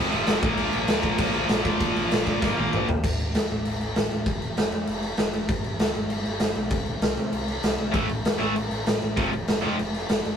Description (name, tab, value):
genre	punk rock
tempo	195 BPM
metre	4/4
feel	straight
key	unclear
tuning	A4 = 440 Hz
part	tight distorted guitar	riff	0.0-2.9, 7.9-9.8 s	F2 to Bb3	-25 LUFS	equal	distortion
part	growling picked electric bass	bass	0.0-10.4 s	F1 to C3	-34 LUFS	equal	overdrive
part	raw garage drum kit	drums	0.1-10.3 s	crash cymbal, kick drum, snare drum, toms	-24 LUFS	equal	none
room	light reverb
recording	rough rehearsal-room recording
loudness	-22 LUFS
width	side -8 dB against mid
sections	0.0-3.0 A section; 3.0-10.4 B section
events	drum fill 2.4-3.0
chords	0.4 Bb5; 3.0 A5; 4.3 N.C.; 5.5 G5; 6.7 N.C.; 7.9 A5; 9.2 F5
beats	0.28 | 0.58 0.89 1.19 1.50 | 1.80 2.11 2.42 2.72 | 3.03 3.33 3.64 3.95 | 4.25 4.56 4.87 5.18 | 5.48 5.79 6.10 6.41 | 6.71 7.02 7.33 7.63 | 7.94 8.25 8.55 8.86 | 9.17 9.48 9.79 10.09